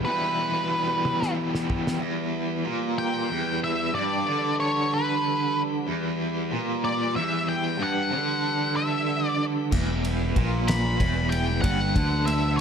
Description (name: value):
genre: psychedelic rock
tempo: 62 BPM (dotted quarters)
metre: 6/8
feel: straight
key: E minor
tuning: A4 = 440 Hz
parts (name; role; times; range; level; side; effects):
- octave-fuzz lead guitar; melody; 0.0-12.6 s; B4 to B5; -27 LUFS; equal; distortion, slapback echo
- tonewheel organ; sustained chords; 0.0-12.6 s; E3 to B4; -36 LUFS; right 4 dB; fast rotary speaker
- cranked stack guitar; riff; 0.0-12.6 s; E2 to E4; -26 LUFS; equal; overdrive, tremolo
- cloth-damped thuddy drum kit; drums; 1.1-2.0, 9.7-12.4 s; crash cymbal, kick drum, ride cymbal, snare drum, toms; -28 LUFS; equal; none
- growling fingered electric bass; bass; 9.7-12.6 s; E1 to D2; -26 LUFS; equal; overdrive
- congas; percussion; 9.7-12.6 s; none; -37 LUFS; right 15 dB; none
room: light reverb, small room ambience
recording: none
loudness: -23 LUFS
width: side -7 dB against mid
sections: 0.0-2.0 A section; 2.0-12.6 B section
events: drum fill 1.1-2.0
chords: 0.0 Em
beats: | 0.09 1.05 | 2.02 2.99 | 3.95 4.92 | 5.88 6.84 | 7.80 8.76 | 9.72 10.68 | 11.64 12.60